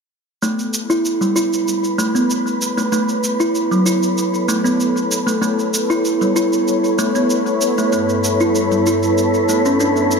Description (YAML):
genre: organic downtempo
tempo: 96 BPM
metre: 4/4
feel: straight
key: A mixolydian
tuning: A4 = 440 Hz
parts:
  - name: warm analog pad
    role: sustained chords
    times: 0.4-10.2 s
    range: G2 to C#5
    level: -20 LUFS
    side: equal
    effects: chorus
  - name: kalimba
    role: arpeggios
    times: 0.4-10.0 s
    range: F#3 to E4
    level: -17 LUFS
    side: equal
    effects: low-pass filter, ping-pong delay
  - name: shaker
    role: drums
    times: 0.4-10.2 s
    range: none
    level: -26 LUFS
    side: right 2 dB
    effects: none
  - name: wind-like tuned noise texture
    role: texture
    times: 1.1-10.2 s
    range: B4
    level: -25 LUFS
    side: right 2 dB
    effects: built-in reverb
room: moderate lush hall reverb, RT60 2.5 s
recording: none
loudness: -15 LUFS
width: side -5 dB against mid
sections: 0.4-10.2 A section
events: filter sweep on kalimba 0.4-10.2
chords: 0.4 A; 2.9 B5; 5.4 A; 7.9 G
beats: | 0.42 1.05 1.67 2.30 | 2.92 3.55 4.17 4.80 | 5.42 6.05 6.67 7.30 | 7.92 8.55 9.17 9.80